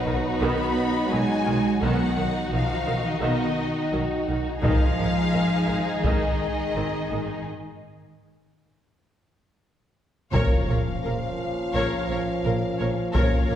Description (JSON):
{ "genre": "cinematic, epic orchestral film score", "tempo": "85 BPM", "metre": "4/4", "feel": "straight", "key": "Bb minor", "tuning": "A4 = 440 Hz", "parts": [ { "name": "warm symphonic violin section", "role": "melody", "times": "0.0-13.6 s", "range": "B4 to B5", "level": "-32 LUFS", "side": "left 4 dB", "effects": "none" }, { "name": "warm symphonic violin section", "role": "second line", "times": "0.0-13.6 s", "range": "D#4 to Db5", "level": "-31 LUFS", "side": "left 2 dB", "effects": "none" }, { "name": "dark French horn section", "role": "sustained chords", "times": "0.0-13.6 s", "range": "D#3 to D#4", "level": "-31 LUFS", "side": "left 1 dB", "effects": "none" }, { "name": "rich symphonic cello section", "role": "bass", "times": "0.0-13.6 s", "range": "Bb2 to B3", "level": "-29 LUFS", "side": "right 2 dB", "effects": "none" }, { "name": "clear symphonic viola section", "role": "accompaniment", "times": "0.1-13.6 s", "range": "D#3 to Bb4", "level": "-31 LUFS", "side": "right 1 dB", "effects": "none" }, { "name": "clear symphonic double bass section", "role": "bass", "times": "0.1-13.6 s", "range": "Ab1 to B1", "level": "-30 LUFS", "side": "right 1 dB", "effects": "none" }, { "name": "taiko ensemble", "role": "drums", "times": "0.1-0.4, 4.6-13.6 s", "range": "none", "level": "-25 LUFS", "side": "equal", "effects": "none" }, { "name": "bright trombone section", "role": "sustained chords", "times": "10.3-13.6 s", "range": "F3", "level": "-30 LUFS", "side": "right 1 dB", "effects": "none" }, { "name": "impact", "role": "sound effects", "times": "10.4-13.2 s", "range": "none", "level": "-35 LUFS", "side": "equal", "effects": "none" } ], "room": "wet scoring stage reverb, RT60 1.7 s", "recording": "heard from further back in the room", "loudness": "-22 LUFS", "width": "side -10 dB against mid", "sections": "0.0-10.3 A section; 10.3-13.6 B section", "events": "break 7.5-10.3; drum fill 9.3-10.3; impact 10.3-13.2", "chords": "0.0 B; 4.6 Ab5; 10.3 Bbm", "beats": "0.42 1.12 | 1.83 2.53 3.23 3.93 | 4.63 5.34 6.04 6.76 | 7.47 8.19 8.91 9.62 | 10.34 11.04 11.75 12.45 | 13.15" }